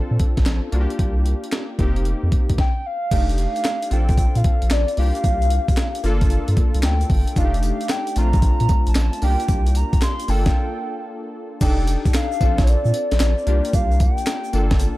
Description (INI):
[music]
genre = R&B, new jack swing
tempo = 113 BPM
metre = 4/4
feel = swing 67% on 16ths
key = unclear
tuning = A4 = 436 Hz
[part]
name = warm analog keys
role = accompaniment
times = 0.0-15.0 s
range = A3 to A4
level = -28 LUFS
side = left 2 dB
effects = chorus
[part]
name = round analog bass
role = bass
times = 0.1-14.9 s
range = F1 to Bb2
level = -19 LUFS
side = equal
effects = none
[part]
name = breakbeat sampler-style drum kit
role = drums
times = 0.2-15.0 s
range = crash cymbal, handclaps, hi-hat, kick drum, snare drum, tambourine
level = -20 LUFS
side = equal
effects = none
[part]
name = hollow clarinet-like synth lead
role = melody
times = 2.6-15.0 s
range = C#5 to C6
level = -26 LUFS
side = equal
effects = chorus, phaser
[part]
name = tube shaker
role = percussion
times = 3.1-15.0 s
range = none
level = -43 LUFS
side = right 7 dB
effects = none
[sound]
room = digital ambience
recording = dark, warm production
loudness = -17 LUFS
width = side -17 dB against mid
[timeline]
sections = 0.0-3.1 A section; 3.1-11.6 B section; 11.6-15.0 C section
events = stop 2.6-3.1; break 10.5-11.6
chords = 0.0 Bbmaj7; 0.7 C9sus4; 1.8 F9sus4; 3.1 F13; 3.9 Bbmaj7; 5.0 C9sus4; 6.0 Gm9; 7.4 F13; 8.2 Bbmaj7; 9.2 C9sus4; 10.3 Gm9; 11.6 F13; 12.4 Bbmaj7; 13.5 C9sus4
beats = 0.46 | 0.99 1.52 2.05 2.58 | 3.12 3.65 4.18 4.71 | 5.24 5.77 6.30 6.83 | 7.36 7.89 8.43 8.96 | 9.49 10.02 10.55 11.08 | 11.61 12.14 12.67 13.20 | 13.73 14.27 14.80